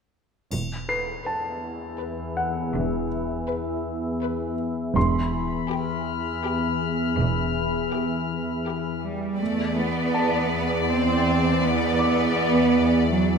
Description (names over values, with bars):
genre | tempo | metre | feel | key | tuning
cinematic, suspense film score | 81 BPM | 3/4 | straight | unclear | A4 = 440 Hz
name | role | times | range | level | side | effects
rich studio cello section | bass | 0.5-13.4 s | E2 to C4 | -24 LUFS | right 4 dB | none
rich studio double bass section | bass | 0.5-13.4 s | E1 to E2 | -28 LUFS | right 3 dB | none
organ-like drone | drone | 1.1-13.4 s | E2 | -26 LUFS | left 2 dB | ensemble chorus, built-in reverb
triangle | percussion | 0.5-2.0 s | none | -41 LUFS | left 2 dB | none
bright grand piano | texture | 0.9-13.4 s | B4 to C7 | -31 LUFS | equal | none
rich studio violin section | melody | 1.3-13.4 s | G4 to D5 | -29 LUFS | left 4 dB | none
rich studio violin section | texture | 5.0-9.0 s | B5 to F6 | -30 LUFS | left 9 dB | none
room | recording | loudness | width
moderate scoring stage reverb, RT60 2.0 s | minimal, uncompressed stereo recording | -22 LUFS | side -6 dB against mid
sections
0.5-9.4 A section; 9.4-13.4 B section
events
none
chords
0.5 B5/E; 5.0 Em; 9.4 Bm/E